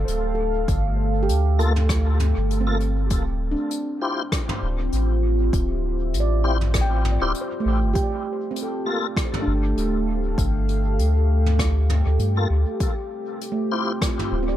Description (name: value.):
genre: ambient dub.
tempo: 99 BPM.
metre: 4/4.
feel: swing 56% on 16ths.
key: unclear.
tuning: A4 = 440 Hz.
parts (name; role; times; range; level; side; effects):
deep dark ambient pad; sustained chords; 0.0-14.6 s; A3 to F5; -28 LUFS; equal; chorus, built-in reverb.
handpan; arpeggios; 0.0-14.6 s; A3 to G5; -30 LUFS; right 3 dB; dub echo.
soft dub sub bass; bass; 0.0-14.6 s; D1 to G2; -21 LUFS; equal; none.
soft brush drum kit; drums; 0.1-14.3 s; hi-hat, rim click, toms; -30 LUFS; equal; dub echo.
electronic kick drum; drums; 0.7-14.2 s; none; -24 LUFS; equal; none.
tonewheel organ; stabs; 1.6-13.9 s; Bb3 to A4; -30 LUFS; left 3 dB; chorus vibrato, slow rotary speaker, dub echo.
room: little or no reverb.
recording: none.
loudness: -20 LUFS.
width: side -12 dB against mid.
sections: 0.0-14.6 A section.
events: none.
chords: 0.0 Gm9; 3.1 Dm11; 8.0 Gm9; 12.8 Dm11.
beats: 0.08 | 0.68 1.29 1.90 2.50 | 3.11 3.71 4.32 4.93 | 5.53 6.14 6.74 7.35 | 7.96 8.56 9.17 9.77 | 10.38 10.99 11.59 12.20 | 12.80 13.41 14.02.